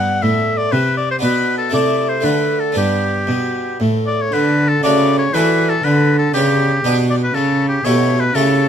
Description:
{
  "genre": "classical, baroque-style sonata movement with continuo",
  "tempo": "119 BPM",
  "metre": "3/4",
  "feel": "straight",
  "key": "G major, D major from 4.3 s",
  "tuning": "A4 = 440 Hz",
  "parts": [
    { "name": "clear oboe", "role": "melody", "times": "0.0-8.7 s", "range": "G4 to F#5", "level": "-18 LUFS", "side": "left 3 dB", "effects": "none" },
    { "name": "harpsichord", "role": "accompaniment", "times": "0.0-8.7 s", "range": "G2 to G4", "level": "-19 LUFS", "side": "right 1 dB", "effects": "none" },
    { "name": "dark cello", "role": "bass", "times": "0.0-8.7 s", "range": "G2 to E3", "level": "-18 LUFS", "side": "right 1 dB", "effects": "none" }
  ],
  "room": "light reverb",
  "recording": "none",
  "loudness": "-14 LUFS",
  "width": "side -8 dB against mid",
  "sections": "0.0-4.3 A section; 4.3-8.7 A section",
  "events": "none",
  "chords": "0.0 G; 1.2 Bm7; 1.7 Am/C; 2.2 D5; 2.8 G; 4.3 D; 5.8 G; 7.3 A7",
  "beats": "0.23 0.73 | 1.23 1.73 2.24 | 2.76 3.28 3.80 | 4.33 4.83 5.34 | 5.84 6.34 6.85 | 7.35 7.85 8.35"
}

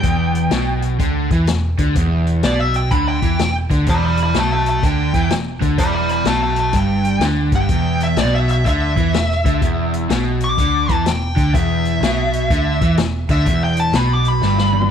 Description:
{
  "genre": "blues rock power trio and southern rock",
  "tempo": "125 BPM",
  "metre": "4/4",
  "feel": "swing 65% on 8ths",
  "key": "E minor",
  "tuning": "A4 = 441 Hz",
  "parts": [
    { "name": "smooth overdriven lead guitar", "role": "melody", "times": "0.0-14.9 s", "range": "D5 to D6", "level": "-21 LUFS", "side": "left 1 dB", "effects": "none" },
    { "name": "overdriven semi-hollow guitar", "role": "riff", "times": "0.0-14.9 s", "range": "E2 to E3", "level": "-18 LUFS", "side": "right 1 dB", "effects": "none" },
    { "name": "vintage muted picked electric bass", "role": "bass", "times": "0.0-14.9 s", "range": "E1 to E2", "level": "-21 LUFS", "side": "equal", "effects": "none" },
    { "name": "vintage drum kit", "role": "drums", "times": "0.0-14.9 s", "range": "hi-hat, kick drum, snare drum, toms", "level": "-21 LUFS", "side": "left 2 dB", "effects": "none" }
  ],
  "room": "little or no reverb",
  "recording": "1960s-style stereo",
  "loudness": "-14 LUFS",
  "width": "side -8 dB against mid",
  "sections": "0.0-14.9 A section",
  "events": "drum fill 14.4-14.9",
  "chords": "0.0 Em",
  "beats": "| 0.04 0.52 1.00 1.48 | 1.96 2.44 2.91 3.39 | 3.87 4.35 4.83 5.31 | 5.79 6.27 6.75 7.23 | 7.71 8.19 8.67 9.14 | 9.62 10.11 10.59 11.06 | 11.54 12.03 12.51 12.98 | 13.46 13.95 14.43 14.90"
}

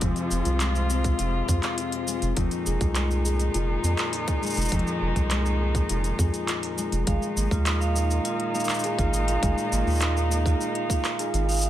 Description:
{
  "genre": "folktronica",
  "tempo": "102 BPM",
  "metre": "4/4",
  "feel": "straight",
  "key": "unclear",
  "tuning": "A4 = 437 Hz",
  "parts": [
    { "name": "dark string quartet", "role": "sustained chords", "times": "0.0-11.7 s", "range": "Bb2 to F4", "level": "-31 LUFS", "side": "left 1 dB", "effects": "none" },
    { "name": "concert harp", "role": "arpeggios", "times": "0.0-11.7 s", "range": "F2 to Ab4", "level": "-30 LUFS", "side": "left 3 dB", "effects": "ping-pong delay" },
    { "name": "round analog bass", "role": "bass", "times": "0.0-11.7 s", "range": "F1 to F2", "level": "-25 LUFS", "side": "right 1 dB", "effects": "none" },
    { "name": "electronic kick drum", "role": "drums", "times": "0.0-11.0 s", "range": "none", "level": "-26 LUFS", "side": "right 1 dB", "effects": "none" },
    { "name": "organic electronic drum kit", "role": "drums", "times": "0.0-11.7 s", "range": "handclaps, hi-hat, shaker", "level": "-30 LUFS", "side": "equal", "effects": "none" },
    { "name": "vibraphone with medium hard mallets", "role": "second line", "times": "7.1-11.7 s", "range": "F4 to F5", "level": "-29 LUFS", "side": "right 4 dB", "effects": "ping-pong delay" }
  ],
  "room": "light reverb",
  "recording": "none",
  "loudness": "-22 LUFS",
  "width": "side -12 dB against mid",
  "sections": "0.0-7.1 A section; 7.1-11.7 B section",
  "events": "none",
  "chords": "0.0 Fm; 2.4 Ebsus4/F; 7.1 Absus2",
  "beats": "| 0.01 0.60 1.19 1.78 | 2.37 2.96 3.54 4.13 | 4.72 5.31 5.90 6.49 | 7.07 7.66 8.25 8.84 | 9.43 10.02 10.60 11.19"
}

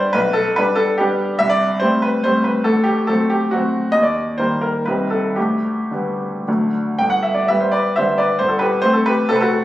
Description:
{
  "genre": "classical, romantic triple-time dance for piano with dotted rhythms",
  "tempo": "105-152 BPM",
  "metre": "3/4",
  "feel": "rubato",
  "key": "G major",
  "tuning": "A4 = 440 Hz",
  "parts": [
    { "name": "clear baby grand piano", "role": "solo", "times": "0.0-9.6 s", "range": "G1 to G5", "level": "-15 LUFS", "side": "equal", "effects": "none" }
  ],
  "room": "moderate recital hall reverb, RT60 1.5 s",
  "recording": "recorded on a phone in the room, club reverb",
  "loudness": "-15 LUFS",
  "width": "side -14 dB against mid",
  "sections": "0.0-7.0 A section; 7.0-9.6 B section",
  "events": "none",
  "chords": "0.1 G/B; 1.4 Am7/C; 2.6 D7; 3.9 Eb; 4.9 Cm; 5.4 G/D; 6.5 D; 7.0 G; 8.4 Am/G",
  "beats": "| 0.14 0.56 0.98 | 1.40 1.81 2.24 | 2.65 3.08 3.52 | 3.94 4.38 4.87 | 5.37 5.92 6.47 | 7.00 7.50 7.97 | 8.40 8.84 9.29"
}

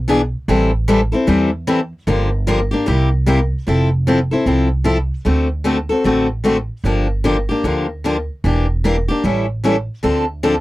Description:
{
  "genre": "acoustic string swing (jazz manouche)",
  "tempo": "151 BPM",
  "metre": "4/4",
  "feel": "swing 61% on 8ths",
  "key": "F major",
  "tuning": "A4 = 440 Hz",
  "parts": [
    { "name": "upright bass", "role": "bass", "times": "0.0-10.6 s", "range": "E1 to E2", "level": "-19 LUFS", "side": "right 1 dB", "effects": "none" },
    { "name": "picked steel-string acoustic guitar", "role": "accompaniment", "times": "0.1-10.5 s", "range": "C3 to A4", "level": "-16 LUFS", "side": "left 2 dB", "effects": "none" }
  ],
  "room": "little or no reverb",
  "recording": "dry, close 1970s-style studio recording",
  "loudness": "-15 LUFS",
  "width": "side -17 dB against mid",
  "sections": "0.0-3.7 A section; 3.7-10.6 B section",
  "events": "none",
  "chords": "0.5 Am7; 2.1 Gm7; 2.9 C7; 3.7 Fmaj7; 5.3 D7; 6.8 Gm7; 8.4 Em7b5; 9.2 A7; 10.0 Dm7",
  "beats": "0.09 | 0.49 0.89 1.28 1.68 | 2.08 2.48 2.87 3.27 | 3.67 4.07 4.46 4.86 | 5.26 5.66 6.05 6.45 | 6.85 7.25 7.65 8.04 | 8.44 8.84 9.24 9.63 | 10.03 10.43"
}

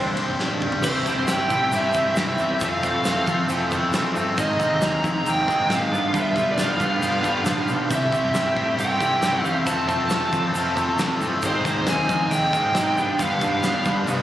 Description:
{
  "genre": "indie rock",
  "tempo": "136 BPM",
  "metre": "4/4",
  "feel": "straight",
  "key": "C major",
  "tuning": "A4 = 440 Hz",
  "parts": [
    { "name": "dark smooth lead guitar", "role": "melody", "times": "0.0-14.2 s", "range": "C5 to Bb5", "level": "-24 LUFS", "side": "equal", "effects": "overdrive, slapback echo" },
    { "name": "fuzz guitar", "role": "riff", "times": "0.0-14.2 s", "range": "G2 to A4", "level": "-25 LUFS", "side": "left 2 dB", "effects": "distortion" },
    { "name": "twangy electric guitar", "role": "riff", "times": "0.0-14.2 s", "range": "Eb3 to G4", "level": "-28 LUFS", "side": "right 5 dB", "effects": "ensemble chorus" },
    { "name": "hollow-body short-scale picked electric bass", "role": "bass", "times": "0.0-14.2 s", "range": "G1 to G3", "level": "-30 LUFS", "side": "right 1 dB", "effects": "none" },
    { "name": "big rock drum kit", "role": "drums", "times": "0.2-14.2 s", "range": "crash cymbal, kick drum, ride cymbal, snare drum, toms", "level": "-27 LUFS", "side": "equal", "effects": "none" },
    { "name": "chorused pulse-width pad", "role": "sustained chords", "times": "0.8-14.2 s", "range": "F4 to E6", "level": "-36 LUFS", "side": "right 1 dB", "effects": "none" },
    { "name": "egg shaker", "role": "percussion", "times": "0.8-14.2 s", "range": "none", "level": "-40 LUFS", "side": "right 1 dB", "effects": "none" }
  ],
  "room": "studio reverb",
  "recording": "recorded on a phone in the room, club reverb",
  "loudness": "-19 LUFS",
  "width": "side -12 dB against mid",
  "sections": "0.8-14.2 A section",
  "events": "drum fill 0.4-0.8",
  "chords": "0.0 Gsus4; 0.8 C6; 2.6 Fmaj7; 4.4 Abadd9; 5.9 G7; 7.9 C6; 9.7 Fmaj7; 11.4 Abadd9; 13.0 G7",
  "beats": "0.40 | 0.84 1.28 1.73 2.17 | 2.61 3.05 3.50 3.94 | 4.38 4.82 5.26 5.70 | 6.14 6.58 7.03 7.46 | 7.91 8.35 8.79 9.23 | 9.67 10.11 10.55 10.99 | 11.43 11.87 12.31 12.75 | 13.19 13.63 14.07"
}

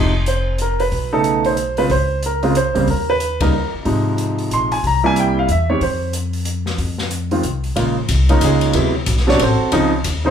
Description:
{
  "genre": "jazz piano trio",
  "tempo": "184 BPM",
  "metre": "3/4",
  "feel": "swing 62% on 8ths",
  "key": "F minor",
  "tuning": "A4 = 440 Hz",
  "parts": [
    { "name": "warm concert grand piano", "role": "melody", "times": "0.0-10.3 s", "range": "C3 to C6", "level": "-17 LUFS", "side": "right 2 dB", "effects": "none" },
    { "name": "upright bass", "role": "bass", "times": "0.0-10.3 s", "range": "F1 to F2", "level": "-20 LUFS", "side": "left 1 dB", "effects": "none" },
    { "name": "open jazz drum kit", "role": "drums", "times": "0.3-10.1 s", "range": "hi-hat, kick drum, ride cymbal, snare drum", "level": "-25 LUFS", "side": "left 2 dB", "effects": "none" }
  ],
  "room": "moderate large studio reverb, RT60 0.8 s",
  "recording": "band playing live in one room",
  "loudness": "-15 LUFS",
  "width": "side -8 dB against mid",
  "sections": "0.0-7.8 A section; 7.8-10.3 B section",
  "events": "band accent 3.4",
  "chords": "0.0 F5; 0.9 B9; 1.9 Dbmaj7(no3); 2.9 Eb5; 3.9 Ab6; 4.8 C7; 5.8 F5; 7.8 Bbm7; 8.7 D13; 9.7 Dbmaj9",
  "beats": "0.27 0.59 | 0.92 1.25 1.57 | 1.90 2.22 2.55 | 2.88 3.20 3.53 | 3.85 4.18 4.51 | 4.83 5.16 5.49 | 5.81 6.14 6.46 | 6.79 7.12 7.44 | 7.77 8.09 8.42 | 8.74 9.07 9.40 | 9.72 10.05"
}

